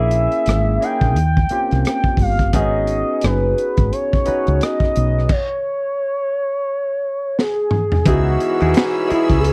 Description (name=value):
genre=R&B, neo-soul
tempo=87 BPM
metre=4/4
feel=swing 60% on 16ths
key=C# minor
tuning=A4 = 441 Hz
part: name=gliding portamento lead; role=melody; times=0.0-9.5 s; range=E4 to G5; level=-22 LUFS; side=equal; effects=chorus
part: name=barky tine electric piano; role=accompaniment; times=0.0-9.5 s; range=A#3 to B4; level=-25 LUFS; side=equal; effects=overdrive, phaser
part: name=woody fretless electric bass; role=bass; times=0.0-9.5 s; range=F#1 to D#2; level=-20 LUFS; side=equal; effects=none
part: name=crunchy breakbeat drum kit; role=drums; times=0.1-9.5 s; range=crash cymbal, finger snaps, hi-hat, kick drum, rim click, snare drum, toms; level=-21 LUFS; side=equal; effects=none
part: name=rich studio string section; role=sustained chords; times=8.1-9.5 s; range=G#4 to E6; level=-33 LUFS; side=equal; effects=none
part: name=warm horn section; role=stabs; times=8.1-9.5 s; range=G#2 to C#4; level=-31 LUFS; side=equal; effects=none
room=small room ambience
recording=dry, close 1970s-style studio recording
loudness=-18 LUFS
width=mono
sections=0.0-8.1 A section; 8.1-9.5 B section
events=stop 5.3-8.1; drum fill 7.4-8.1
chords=0.0 A#m7b5; 1.2 D#7; 2.5 G#m7; 5.3 N.C.; 8.1 C#m7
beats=0.47 1.16 1.84 | 2.53 3.22 3.91 4.60 | 5.29 5.98 6.67 7.36 | 8.05 8.74 9.43